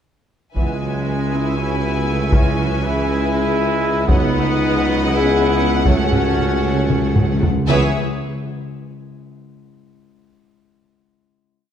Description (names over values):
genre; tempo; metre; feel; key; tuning
cinematic, epic orchestral film score; 236 BPM (eighths); 7/8; straight; C# minor; A4 = 439 Hz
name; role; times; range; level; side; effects
warm symphonic violin section; melody; 0.6-8.0 s; E5 to G#5; -27 LUFS; left 5 dB; none
warm symphonic violin section; second line; 0.6-8.0 s; A4 to E5; -29 LUFS; left 2 dB; none
clear symphonic viola section; accompaniment; 0.6-8.0 s; E3 to G#4; -28 LUFS; equal; none
bright trombone section; sustained chords; 0.6-7.9 s; E3 to B3; -29 LUFS; right 3 dB; none
mellow French horn section; sustained chords; 0.6-7.9 s; C#4 to G#4; -24 LUFS; left 6 dB; none
clear trumpet section; stabs; 0.6-7.9 s; G#3 to C#5; -24 LUFS; right 2 dB; none
mellow tuba; bass; 0.6-7.9 s; C#2; -23 LUFS; right 1 dB; none
rich symphonic cello section; bass; 0.6-8.0 s; C#3; -25 LUFS; right 4 dB; none
warm symphonic double bass section; bass; 0.6-8.0 s; C#2; -26 LUFS; right 3 dB; none
taiko ensemble; drums; 0.6-7.7 s; none; -18 LUFS; equal; none
timpani; percussion; 5.9-7.9 s; C#3; -25 LUFS; left 1 dB; none
room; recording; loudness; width
moderate scoring stage reverb, RT60 1.9 s; none; -15 LUFS; side -9 dB against mid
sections
0.6-7.7 theme; 7.7-9.5 final chord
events
timpani fill 5.9-7.7; drum fill 6.9-7.7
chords
0.6 C#m7; 4.1 B/C#; 5.9 F#m/C#; 7.7 C#5